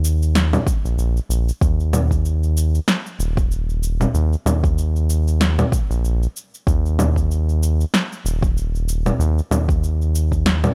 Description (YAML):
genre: organic downtempo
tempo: 95 BPM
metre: 4/4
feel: swing 57% on 16ths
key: unclear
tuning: A4 = 440 Hz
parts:
  - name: round analog bass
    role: bass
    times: 0.0-10.7 s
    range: Eb1 to Eb2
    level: -20 LUFS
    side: equal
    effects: none
  - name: electronic cabasa, snare drum and congas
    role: drums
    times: 0.0-10.7 s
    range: none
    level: -23 LUFS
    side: equal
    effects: overdrive
  - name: electronic kick drum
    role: drums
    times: 0.7-10.4 s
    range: none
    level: -22 LUFS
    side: equal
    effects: overdrive
room: little or no reverb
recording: none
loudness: -19 LUFS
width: mono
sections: 0.0-10.7 A section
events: none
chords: none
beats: 0.35 0.98 | 1.61 2.25 2.88 3.51 | 4.14 4.77 5.40 6.03 | 6.67 7.30 7.93 8.56 | 9.19 9.82 10.46